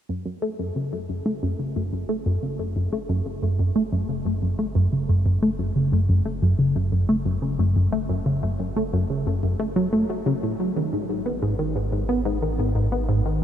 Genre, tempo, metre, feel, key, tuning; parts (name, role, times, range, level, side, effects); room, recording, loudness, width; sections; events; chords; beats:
ambient, sequencer-driven space music; 90 BPM; 4/4; straight; F# dorian; A4 = 441 Hz
tight sequenced synth; riff; 0.1-13.4 s; F#2 to B3; -21 LUFS; equal; chorus, phaser, ping-pong delay
round analog bass; bass; 0.1-13.4 s; F#1 to G#1; -34 LUFS; equal
moderate huge ambient reverb, RT60 8.8 s; dark, warm production; -21 LUFS; side -10 dB against mid
0.1-13.4 A section
fade-in on analog synth bass 0.1-13.4; filter sweep on synth arpeggio sound 0.1-13.4
0.1 F#5; 10.8 G#m
| 0.09 0.76 1.43 2.09 | 2.76 3.42 4.09 4.76 | 5.42 6.09 6.76 7.42 | 8.09 8.76 9.43 10.09 | 10.76 11.43 12.09 12.76 | 13.43